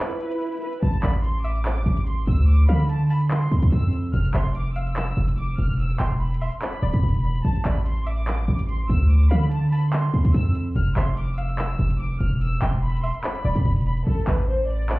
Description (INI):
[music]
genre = hip hop, trap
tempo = 145 BPM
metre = 4/4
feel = half-time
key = unclear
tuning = A4 = 441 Hz
[part]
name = warm studio violin section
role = melody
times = 0.0-15.0 s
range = A4 to F6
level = -32 LUFS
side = equal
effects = low-pass filter, digital delay
[part]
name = booming analog drum machine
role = drums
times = 0.0-15.0 s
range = handclaps, hi-hat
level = -31 LUFS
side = equal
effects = none
[part]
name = swell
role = sound effects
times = 0.0-0.8 s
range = none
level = -31 LUFS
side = right 1 dB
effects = none
[part]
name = hard-hitting 808-style bass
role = bass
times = 0.8-15.0 s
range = D1 to D3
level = -20 LUFS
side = equal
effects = none
[part]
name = string-like resonator pluck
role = second line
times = 1.0-13.6 s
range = D5 to A5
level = -36 LUFS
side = equal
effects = chorus, digital delay
[sound]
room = digital ambience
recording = heard muffled through a wall, club reverb, EQ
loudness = -20 LUFS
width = side -20 dB against mid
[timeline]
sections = 0.8-14.1 A section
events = break 0.0-0.8; swell 0.0-0.8; hi-hats muted 14.1-15.0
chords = 0.0 N.C.; 0.8 A5; 2.5 Dm7; 4.1 Dmadd9; 5.8 Em; 7.4 A5; 9.1 Dm7; 10.8 Dmadd9; 12.4 Em; 14.1 Amadd11